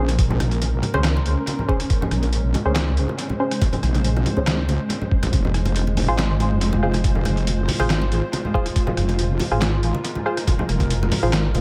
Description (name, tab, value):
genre	deep dubstep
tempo	140 BPM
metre	4/4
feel	half-time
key	Bb minor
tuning	A4 = 440 Hz
part	granular cloud pad	sustained chords	0.1-11.6 s	Ab3 to C5	-30 LUFS	equal	built-in reverb
part	filtered dub chord stab	stabs	0.0-11.3 s	Db4 to C5	-30 LUFS	equal	chorus, dub echo
part	wobble bass	bass	0.0-11.6 s	Eb1 to Db2	-23 LUFS	equal	chorus
part	trip hop sampler-style drum kit	drums	0.1-11.6 s	handclaps, hi-hat, rim click, snare drum	-30 LUFS	equal	small room reverb, analog delay
part	congas	percussion	0.1-11.6 s	none	-31 LUFS	equal	dub echo
part	electronic kick drum	drums	0.2-10.9 s	none	-24 LUFS	equal	small room reverb
room	light reverb, digital ambience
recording	echo-heavy mix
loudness	-21 LUFS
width	mono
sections	0.0-11.6 A section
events	none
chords	0.0 Bbm7; 5.3 Fm